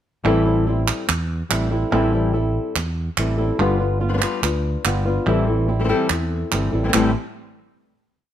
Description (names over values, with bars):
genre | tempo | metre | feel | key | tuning
flamenco | 143 BPM | 4/4 | straight | A minor | A4 = 439 Hz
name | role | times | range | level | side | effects
flamenco guitar | accompaniment | 0.2-7.1 s | A2 to B4 | -22 LUFS | left 4 dB | none
flamenco guitar | stabs | 0.2-7.1 s | A2 to F4 | -26 LUFS | right 4 dB | none
fretless electric bass | bass | 0.2-7.1 s | G1 to E2 | -22 LUFS | right 1 dB | none
palmas hand claps | percussion | 0.2-7.0 s | none | -24 LUFS | right 6 dB | none
room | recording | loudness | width
light reverb | none | -18 LUFS | side -10 dB against mid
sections
0.2-6.9 groove; 6.9-8.3 final chord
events
none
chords
0.2 Am7; 3.6 G7; 5.3 Am7